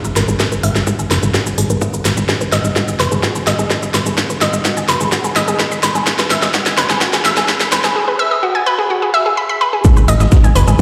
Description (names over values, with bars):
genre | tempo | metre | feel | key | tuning
melodic techno | 127 BPM | 4/4 | straight | unclear | A4 = 440 Hz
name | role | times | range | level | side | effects
analog pluck | arpeggios | 0.0-10.8 s | F#4 to B5 | -19 LUFS | equal | chorus, sidechain pumping, delay
tight sequencer bass | bass | 0.0-10.8 s | F#1 to G#2 | -20 LUFS | equal | sidechain pumping
house drum kit | drums | 0.0-10.8 s | hi-hat, shaker, snare drum | -20 LUFS | equal | high-pass filter on snare, studio reverb, high-pass filter on perc, high-pass filter on hats
electronic kick drum | drums | 0.4-10.8 s | none | -16 LUFS | equal | high-pass filter on kick, studio reverb
breakbeat sampler-style drum kit | drums | 9.8-10.8 s | hi-hat, snare drum | -34 LUFS | equal | sidechain pumping on hats, high-pass filter on hats, studio reverb, high-pass filter on snare
room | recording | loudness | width
wet scoring stage reverb, RT60 1.9 s | played on a big sound system in a bare room, stone room reverb, high-pass filter | -15 LUFS | mono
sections
0.0-9.8 A section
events
build-up 0.0-9.8; drum fill 0.0-8.0; filter sweep on synth arpeggio sound 0.0-9.8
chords
0.0 F#9; 2.3 B; 6.1 F#9sus4; 9.8 G#m